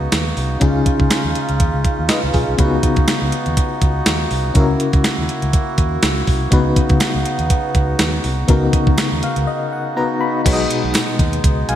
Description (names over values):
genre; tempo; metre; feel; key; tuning
1980s-style pop; 122 BPM; 4/4; swing 55% on 16ths; unclear; A4 = 440 Hz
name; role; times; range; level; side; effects
FM electric piano with tremolo; accompaniment; 0.0-11.8 s; Cb3 to Cb6; -20 LUFS; left 3 dB; none
hand-pumped harmonium; sustained chords; 0.0-11.8 s; Db3 to Gb4; -24 LUFS; right 2 dB; none
fingered electric bass; bass; 0.0-11.8 s; Cb2 to Eb2; -21 LUFS; equal; none
clean 12-bit digital drum machine; drums; 0.1-11.8 s; crash cymbal, hi-hat, kick drum, snare drum, tambourine; -17 LUFS; right 1 dB; gated reverb
group handclap; percussion; 0.1-11.1 s; none; -35 LUFS; right 5 dB; none
room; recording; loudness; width
moderate lush hall reverb, RT60 2.3 s; bright 1980s-style digital production; -14 LUFS; side -11 dB against mid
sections
0.0-10.5 A section; 10.5-11.8 B section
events
FM electric piano fill 9.0-10.5; break 9.5-10.5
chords
0.0 Cb; 0.6 Dbadd9; 2.6 Cb/Db; 4.6 Gb7/Db; 6.5 Cb; 10.5 Cb6